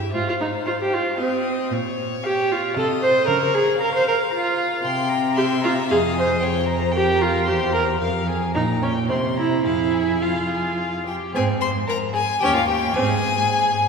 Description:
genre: quick classical-period movement for string quartet.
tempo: 113 BPM.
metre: 3/4.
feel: rubato.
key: F minor.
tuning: A4 = 440 Hz.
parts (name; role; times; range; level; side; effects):
clear violin; melody; 0.0-13.9 s; G4 to C6; -26 LUFS; left 5 dB; none.
rich cello; bass; 0.0-13.4 s; Eb2 to Db3; -26 LUFS; right 1 dB; none.
clear viola; accompaniment; 0.1-13.2 s; C4 to C5; -21 LUFS; right 2 dB; none.
rich violin; second line; 0.7-13.9 s; F4 to C6; -28 LUFS; left 2 dB; none.
room: wet church reverb, RT60 3.3 s.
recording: recorded in a church or concert hall.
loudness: -18 LUFS.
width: side -5 dB against mid.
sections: 0.0-11.4 A section; 11.4-13.9 B section.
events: none.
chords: 0.1 Fm/Ab; 1.7 Bbm; 2.8 F7/C; 3.3 Bbm/Db; 4.8 C7; 5.9 Fm; 6.4 Bbm69/F; 7.5 C7/E; 8.0 Fm; 8.6 Gdim/Bb; 9.1 C7; 9.7 Fm; 11.4 Ab; 12.4 Eb7; 13.0 Ab.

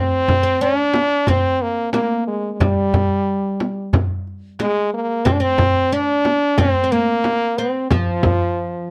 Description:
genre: Turkish makam ensemble.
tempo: 90 BPM.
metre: 4/4.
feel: straight.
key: C makam ussak.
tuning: A4 = 440 Hz.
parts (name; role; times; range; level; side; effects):
French horn with straight mute; melody; 0.0-8.9 s; F3 to D4-28c; -21 LUFS; equal; none.
oud; second line; 0.0-8.9 s; F3 to D4-30c; -28 LUFS; equal; none.
darbuka; percussion; 0.3-8.4 s; none; -23 LUFS; equal; none.
frame drum; percussion; 0.3-8.4 s; none; -24 LUFS; equal; none.
room: light reverb.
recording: dark, warm production.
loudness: -18 LUFS.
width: mono.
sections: 0.0-8.9 A section.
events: none.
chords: none.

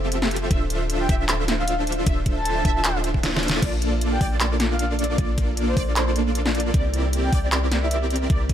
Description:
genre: future bass.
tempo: 154 BPM.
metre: 4/4.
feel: swing 53% on 16ths, half-time.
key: D minor.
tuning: A4 = 440 Hz.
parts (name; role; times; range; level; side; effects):
ethereal airy pad; sustained chords; 0.0-8.5 s; Bb3 to E5; -32 LUFS; right 2 dB; ensemble chorus, built-in reverb, sidechain pumping.
wide unison pluck; arpeggios; 0.0-8.5 s; D5 to E5; -36 LUFS; equal; phaser, cassette tape, sidechain pumping.
dense compressed supersaw; riff; 0.0-8.5 s; Bb3 to E5; -26 LUFS; equal; vintage 12-bit sampler grit, sidechain pumping.
warm 808-style bass; bass; 0.0-8.5 s; D1 to C2; -25 LUFS; equal; tube saturation, sidechain pumping.
pop drum kit; drums; 0.1-8.5 s; crash cymbal, handclaps, hi-hat, snare drum; -25 LUFS; equal; overdrive.
electronic kick drum; drums; 0.5-8.5 s; none; -22 LUFS; equal; overdrive.
breathy flute-like synth lead; melody; 1.0-8.0 s; C5 to A5; -30 LUFS; equal; chorus, vintage 12-bit sampler grit, sidechain pumping, digital delay.
room: light reverb, digital ambience.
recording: none.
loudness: -20 LUFS.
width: side -10 dB against mid.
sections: 0.0-8.5 A section.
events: drum fill 3.2-3.6.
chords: 0.0 Fmaj9; 0.5 Dm9; 3.6 Bbmaj7; 6.7 C9.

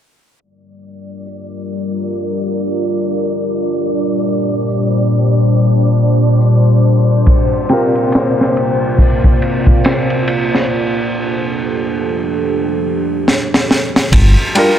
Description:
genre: trip hop.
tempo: 70 BPM.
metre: 4/4.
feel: swing 59% on 16ths.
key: G minor.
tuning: A4 = 440 Hz.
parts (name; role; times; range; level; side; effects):
deep dark ambient pad; sustained chords; 1.2-14.1 s; Bb2 to C5; -15 LUFS; equal; chorus, built-in reverb.
wind-like tuned noise texture; texture; 1.1-10.7 s; D5; -26 LUFS; right 3 dB; built-in reverb.
tambourine; percussion; 1.3-10.0 s; none; -43 LUFS; right 2 dB; none.
crunchy breakbeat drum kit; drums; 7.3-14.8 s; hi-hat, kick drum, ride cymbal, snare drum; -14 LUFS; equal; vintage 12-bit sampler grit.
felt-muted upright piano; accompaniment; 7.7-14.8 s; C3 to Bb4; -16 LUFS; equal; harmonic tremolo, low-pass filter, tape echo.
deep dub fingered electric bass; bass; 14.1-14.3 s; G1; -9 LUFS; equal; tube saturation.
room: moderate echo chamber reverb, RT60 2.3 s.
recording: low-pass filter.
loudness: -12 LUFS.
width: side -10 dB against mid.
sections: 0.4-14.1 A section.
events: filter sweep 0.4-14.1; break 10.7-14.1; drum fill 13.3-14.1.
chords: 0.4 Gm7; 3.8 Bb69; 7.3 C7sus4; 10.7 F69; 14.1 Gm7.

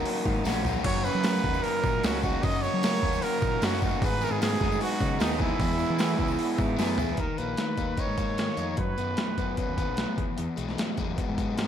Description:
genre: indie rock.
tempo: 152 BPM.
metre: 4/4.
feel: straight.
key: unclear.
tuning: A4 = 441 Hz.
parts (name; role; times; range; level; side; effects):
crunchy overdriven guitar; riff; 0.0-11.7 s; E2 to G#4; -31 LUFS; left 7 dB; slapback echo.
crunchy overdriven guitar; riff; 0.0-7.2 s; E2 to A#4; -33 LUFS; right 10 dB; lush chorus, slapback echo.
growling picked electric bass; bass; 0.0-11.7 s; A#1 to F#3; -32 LUFS; equal; overdrive.
breakbeat sampler-style drum kit; drums; 0.1-11.7 s; crash cymbal, hi-hat, kick drum, snare drum, splash cymbal, toms; -30 LUFS; equal; overdrive.
tambourine; percussion; 0.3-7.1 s; none; -49 LUFS; right 15 dB; none.
breathy trumpet; melody; 0.9-10.2 s; D#4 to D#5; -31 LUFS; right 4 dB; slapback echo.
room: moderate lush hall reverb, RT60 1.5 s.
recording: big arena sound.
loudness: -25 LUFS.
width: side -9 dB against mid.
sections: 0.0-7.2 A section; 7.2-11.7 B section.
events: drum fill 0.5-0.9, 6.8-7.2.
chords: 0.0 D#m7; 0.9 F#6; 4.0 G#m7; 5.6 E; 7.2 D#5; 8.8 F#sus4; 10.2 Eadd9.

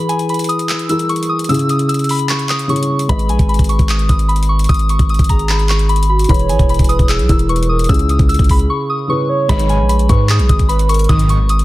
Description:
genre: hip hop, trap.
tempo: 150 BPM.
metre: 4/4.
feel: half-time.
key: G# minor.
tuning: A4 = 440 Hz.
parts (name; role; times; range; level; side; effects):
soft synth bell; melody; 0.0-11.6 s; G#5 to E6; -20 LUFS; left 1 dB; chorus, ping-pong delay.
felt-muted upright piano; accompaniment; 0.0-11.6 s; C#3 to D#5; -20 LUFS; left 1 dB; none.
trap drum kit; drums; 0.1-11.6 s; handclaps, hi-hat, kick drum; -16 LUFS; equal; none.
long sustained 808-style bass; bass; 3.1-11.6 s; E1 to G#2; -14 LUFS; equal; none.
hollow clarinet-like synth lead; second line; 5.3-11.1 s; F#4 to C#5; -22 LUFS; right 5 dB; chorus, ping-pong delay.
big bright polysynth; stabs; 9.5-11.4 s; B1 to D#3; -20 LUFS; equal; phaser, ping-pong delay.
room: little or no reverb.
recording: dense, heavily limited modern master, vinyl crackle.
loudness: -12 LUFS.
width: side -17 dB against mid.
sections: 0.0-9.5 A section; 9.5-11.6 B section.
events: break 0.0-4.7, 8.7-9.5.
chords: 0.0 E; 1.5 C#m; 3.1 G#m; 6.3 E; 7.9 C#m; 9.5 G#m.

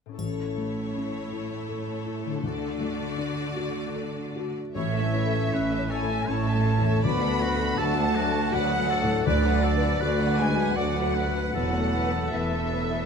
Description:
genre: cinematic, emotional film score for orchestra.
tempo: 79 BPM.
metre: 3/4.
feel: rubato.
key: A major.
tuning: A4 = 440 Hz.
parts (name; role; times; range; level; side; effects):
concert harp; arpeggios; 0.1-13.1 s; A2 to D5; -33 LUFS; left 7 dB; none.
clear symphonic violin section; second line; 0.2-13.1 s; F#4 to F#5; -35 LUFS; left 3 dB; none.
clear symphonic viola section; accompaniment; 0.2-13.1 s; D3 to F#4; -36 LUFS; right 1 dB; none.
felt-muted upright piano; accompaniment; 0.2-13.1 s; A1 to F#5; -32 LUFS; left 3 dB; none.
clear symphonic cello section; bass; 0.2-13.0 s; D2 to D3; -31 LUFS; right 4 dB; none.
triangle; percussion; 0.2-1.7 s; none; -50 LUFS; equal; none.
warm symphonic violin section; melody; 4.7-13.1 s; D5 to B5; -32 LUFS; left 3 dB; none.
bright small flute group; second line; 4.8-13.1 s; D5 to B5; -32 LUFS; right 3 dB; none.
clear oboe; second line; 4.8-13.1 s; F#4 to D5; -34 LUFS; right 2 dB; none.
mellow French horn section; sustained chords; 4.8-13.1 s; D3 to B3; -33 LUFS; left 6 dB; none.
bright symphonic double bass section; bass; 4.8-13.0 s; E1 to D2; -30 LUFS; right 4 dB; none.
room: light reverb.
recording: close, detailed microphones.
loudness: -24 LUFS.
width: side -6 dB against mid.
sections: 0.2-4.8 A section; 4.8-13.1 B section.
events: none.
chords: 0.2 A; 2.4 D; 4.8 A; 7.0 D; 9.3 Bm/D; 11.5 Esus4.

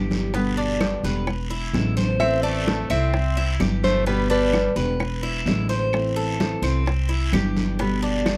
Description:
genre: latin, Cuban son and guajira.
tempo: 129 BPM.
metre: 4/4.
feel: straight.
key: A minor.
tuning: A4 = 440 Hz.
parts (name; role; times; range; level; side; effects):
fingerpicked steel-string acoustic guitar; accompaniment; 0.0-8.4 s; B2 to G4; -30 LUFS; equal; none.
Cuban tres; arpeggios; 0.0-8.4 s; B3 to C5; -30 LUFS; equal; none.
upright bass; bass; 0.0-8.4 s; E1 to C2; -27 LUFS; equal; none.
bongos; percussion; 0.1-8.4 s; none; -32 LUFS; equal; none.
congas; percussion; 0.1-8.4 s; none; -30 LUFS; equal; none.
guiro; percussion; 0.1-8.4 s; none; -38 LUFS; equal; none.
claves; percussion; 0.8-8.4 s; none; -35 LUFS; equal; none.
nylon-string guitar; melody; 2.2-4.7 s; B4 to E5; -27 LUFS; equal; none.
bright trumpet; second line; 2.2-4.7 s; G3 to C4; -35 LUFS; equal; none.
room: little or no reverb.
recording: dry, close 1970s-style studio recording.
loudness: -22 LUFS.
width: mono.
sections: 0.0-8.4 A section.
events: none.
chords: 0.3 G; 1.3 E7; 2.2 Am; 3.1 Cadd9; 4.1 G; 5.0 E7; 5.9 Am; 6.9 Cadd9; 7.8 G.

